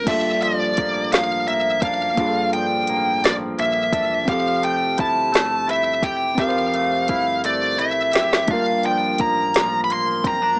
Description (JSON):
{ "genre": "slow six-eight R&B", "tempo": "57 BPM (dotted quarters)", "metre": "6/8", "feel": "straight", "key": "G dorian", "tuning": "A4 = 439 Hz", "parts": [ { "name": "high-gain lead guitar", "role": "melody", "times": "0.0-10.6 s", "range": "C5 to C6", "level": "-22 LUFS", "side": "equal", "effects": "distortion, cassette tape" }, { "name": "tine electric piano", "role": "accompaniment", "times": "0.0-10.6 s", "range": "A3 to C5", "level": "-29 LUFS", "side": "equal", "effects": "cassette tape" }, { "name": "deep dub fingered electric bass", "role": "bass", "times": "0.0-10.6 s", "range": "E1 to Bb1", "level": "-41 LUFS", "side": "equal", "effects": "none" }, { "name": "electric guitar at the edge of break-up", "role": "second line", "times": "0.1-10.6 s", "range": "G2 to G4", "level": "-30 LUFS", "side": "equal", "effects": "subtle chorus, cassette tape" }, { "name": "smooth R&B drum kit", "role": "drums", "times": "0.1-10.4 s", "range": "crash cymbal, hi-hat, kick drum, snare drum", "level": "-23 LUFS", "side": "equal", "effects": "cassette tape" } ], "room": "moderate studio reverb, RT60 0.5 s", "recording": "home recording on cassette, small speaker sound", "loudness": "-20 LUFS", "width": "mono", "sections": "0.1-10.6 A section", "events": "drum fill 7.4-8.5", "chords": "0.1 Gm7; 4.3 Fmaj9; 8.5 Fadd9" }